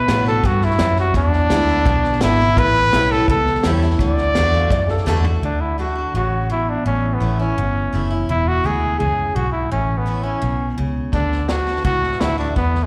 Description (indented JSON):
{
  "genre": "honky-tonk and classic country",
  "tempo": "168 BPM",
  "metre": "4/4",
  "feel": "straight",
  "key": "D major",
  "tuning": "A4 = 440 Hz",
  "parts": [
    { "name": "breathy trumpet", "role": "melody", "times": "0.0-12.9 s", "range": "B3 to D5", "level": "-22 LUFS", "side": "equal", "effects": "slapback echo" },
    { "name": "picked steel-string acoustic guitar", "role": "accompaniment", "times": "0.0-12.9 s", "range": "E2 to F#4", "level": "-27 LUFS", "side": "equal", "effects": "slapback echo" },
    { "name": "vintage muted fingered electric bass", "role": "bass", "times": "0.0-12.9 s", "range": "E1 to A2", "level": "-23 LUFS", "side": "equal", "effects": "none" },
    { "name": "vintage drum kit", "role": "drums", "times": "0.1-5.3, 11.1-12.8 s", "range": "hi-hat, kick drum, snare drum, toms", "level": "-25 LUFS", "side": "equal", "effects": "none" },
    { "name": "dark upright piano", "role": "second line", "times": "4.5-5.3 s", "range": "G#4 to F5", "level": "-29 LUFS", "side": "equal", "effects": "slapback echo" }
  ],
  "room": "light reverb, studio ambience",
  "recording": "live gig heard through the venue's PA, recital hall reverb",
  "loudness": "-18 LUFS",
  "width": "mono",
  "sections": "0.0-5.4 A section; 5.4-12.9 B section",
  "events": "drum fill 5.1-5.4",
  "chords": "0.0 Bm; 1.2 E7; 2.6 A7; 4.0 D; 6.9 A; 8.3 E; 9.7 A; 11.1 D"
}